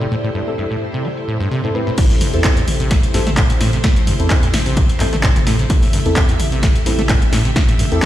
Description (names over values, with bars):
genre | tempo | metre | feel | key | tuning
acid house | 129 BPM | 4/4 | swing 54% on 16ths | A minor | A4 = 440 Hz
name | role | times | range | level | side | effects
string machine, full ensemble | sustained chords | 0.0-8.1 s | A3 to E5 | -25 LUFS | equal | ensemble chorus, sidechain pumping
acid bass, saw | riff | 0.0-8.1 s | A1 to A3 | -21 LUFS | equal | cassette tape, sidechain pumping, tape echo
punchy analog drum machine | drums | 0.0-8.1 s | crash cymbal, handclaps, hi-hat, snare drum, toms | -21 LUFS | equal | low-pass filter on hats, low-pass filter on cymbals, low-pass filter on toms, low-pass filter on snare
warbly tape-like pad | texture | 0.0-2.0 s | E4 to G5 | -29 LUFS | left 1 dB | chorus, built-in reverb, sidechain pumping
deep mellow chord stab | stabs | 0.5-8.0 s | C4 to B4 | -24 LUFS | left 1 dB | analog chorus, tape echo
saturated sub bass | bass | 2.0-8.1 s | A1 to E2 | -20 LUFS | equal | sidechain pumping
electronic kick drum | drums | 2.0-8.1 s | none | -15 LUFS | equal | none
room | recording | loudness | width
digital ambience | played on a big sound system in a bare room, stone room reverb | -13 LUFS | side -13 dB against mid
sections
0.0-2.0 A section; 2.0-8.1 B section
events
filter sweep on synth stab 0.0-2.0; drop 2.0-8.1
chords
0.0 Am7